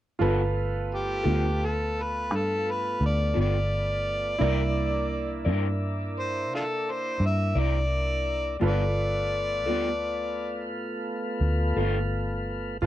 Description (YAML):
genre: blues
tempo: 57 BPM (dotted quarters)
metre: 12/8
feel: straight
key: G mixolydian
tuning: A4 = 439 Hz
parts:
  - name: bright baby grand piano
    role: accompaniment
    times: 0.2-12.9 s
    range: Bb3 to D5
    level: -35 LUFS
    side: right 5 dB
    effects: none
  - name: electric guitar through a small old amp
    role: accompaniment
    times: 0.2-12.0 s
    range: G3 to D5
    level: -29 LUFS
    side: left 2 dB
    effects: harmonic tremolo
  - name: tonewheel organ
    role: sustained chords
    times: 0.2-12.9 s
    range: A3 to A4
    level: -34 LUFS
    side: left 1 dB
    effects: slow rotary speaker
  - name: vintage muted fingered electric bass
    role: bass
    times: 0.2-12.9 s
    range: G1 to C3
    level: -27 LUFS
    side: equal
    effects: none
  - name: overdriven harmonica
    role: melody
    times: 0.9-10.7 s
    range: D4 to E5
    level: -29 LUFS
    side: left 1 dB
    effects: slapback echo
room: little or no reverb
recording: dry, close 1970s-style studio recording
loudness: -24 LUFS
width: side -13 dB against mid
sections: 0.2-12.9 A section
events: none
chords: 0.2 G9; 4.4 C9; 8.6 G9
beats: | 0.19 1.25 2.30 3.35 | 4.40 5.46 6.51 7.56 | 8.61 9.66 10.71 11.76 | 12.81